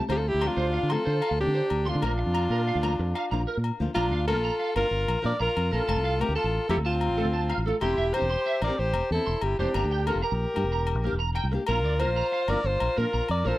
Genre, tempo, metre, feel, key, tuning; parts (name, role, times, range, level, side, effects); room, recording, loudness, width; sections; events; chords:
highlife guitar band; 124 BPM (dotted quarters); 12/8; straight; A4 = 441 Hz
flamenco guitar; accompaniment; 0.0-13.6 s; E3 to G4; -34 LUFS; left 3 dB
clear alto saxophone; melody; 0.1-13.6 s; F4 to D5; -28 LUFS; equal
electric guitar at the edge of break-up; arpeggios; 0.1-13.5 s; A4 to C6; -33 LUFS; right 4 dB; ensemble chorus, slapback echo
fingered electric bass; bass; 0.1-13.5 s; E1 to D3; -28 LUFS; equal
agogo bells; percussion; 0.1-13.4 s; -36 LUFS; left 7 dB
clear trumpet; second line; 0.2-13.6 s; C4 to Bb4; -36 LUFS; left 5 dB
small room ambience; dry, close 1970s-style studio recording; -24 LUFS; side -16 dB against mid
0.0-4.0 A section; 4.0-13.6 B section
0.1 Dm7; 2.0 Bb; 5.9 F; 7.8 Cadd9/E; 9.8 Gm; 11.7 Bb